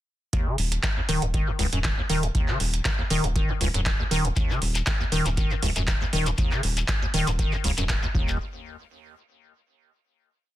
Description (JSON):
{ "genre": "acid house", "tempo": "119 BPM", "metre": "4/4", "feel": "swing 54% on 16ths", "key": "Eb minor", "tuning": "A4 = 440 Hz", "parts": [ { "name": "liquid acid bass", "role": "riff", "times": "0.3-8.4 s", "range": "Db2 to Eb3", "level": "-27 LUFS", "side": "equal", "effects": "tube saturation, analog chorus, sidechain pumping, ping-pong delay" }, { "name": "booming analog drum machine", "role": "drums", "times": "0.3-8.0 s", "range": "handclaps, hi-hat", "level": "-29 LUFS", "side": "right 2 dB", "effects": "none" }, { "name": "electronic kick drum", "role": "drums", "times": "0.3-8.3 s", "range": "none", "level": "-27 LUFS", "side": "equal", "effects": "none" }, { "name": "round analog bass", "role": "bass", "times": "0.6-8.4 s", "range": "Eb1", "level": "-28 LUFS", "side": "equal", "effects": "sidechain pumping" }, { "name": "shekere", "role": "percussion", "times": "4.4-8.4 s", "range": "none", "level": "-34 LUFS", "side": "left 5 dB", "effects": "none" } ], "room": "little or no reverb", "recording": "dense, heavily limited modern master", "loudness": "-22 LUFS", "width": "side -14 dB against mid", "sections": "0.3-8.4 groove; 8.4-10.4 final hit", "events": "none", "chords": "none" }